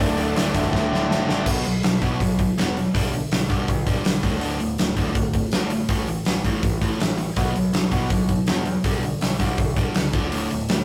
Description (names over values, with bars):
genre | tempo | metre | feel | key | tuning
punk rock | 163 BPM | 4/4 | straight | D major | A4 = 440 Hz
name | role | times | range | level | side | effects
lightly driven lead guitar | melody | 0.0-1.3 s | D4 to D5 | -33 LUFS | equal | none
biting overdriven guitar | riff | 0.0-10.8 s | D2 to B3 | -27 LUFS | equal | none
raw garage guitar | riff | 0.0-1.5 s | D2 to D3 | -28 LUFS | equal | overdrive
growling picked electric bass | bass | 0.0-10.8 s | D1 to E2 | -31 LUFS | equal | overdrive
big rock drum kit | drums | 0.2-10.8 s | crash cymbal, hi-hat, kick drum, snare drum | -25 LUFS | equal | none
room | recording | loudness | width
light reverb | rough rehearsal-room recording, warm saturation | -22 LUFS | mono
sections
0.0-1.5 A section; 1.5-10.8 B section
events
drum fill 0.7-1.5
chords
0.0 D; 1.5 B5; 2.9 G/B; 4.2 D5; 5.9 A5; 7.4 B5; 8.9 G/B; 10.1 D5